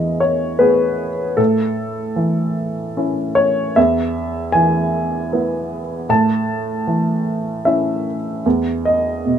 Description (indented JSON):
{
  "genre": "neoclassical minimalist piano",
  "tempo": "76 BPM",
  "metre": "3/4",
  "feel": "rubato",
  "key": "E major",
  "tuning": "A4 = 442 Hz",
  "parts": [
    { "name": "warm upright piano", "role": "solo", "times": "0.0-9.4 s", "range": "E2 to A5", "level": "-16 LUFS", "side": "equal", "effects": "none" }
  ],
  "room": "light reverb",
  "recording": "minimal, uncompressed stereo recording",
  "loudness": "-16 LUFS",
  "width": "side -8 dB against mid",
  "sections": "0.0-9.4 A section",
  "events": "none",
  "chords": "0.0 E; 1.4 A; 3.8 E; 6.1 A; 8.4 E5"
}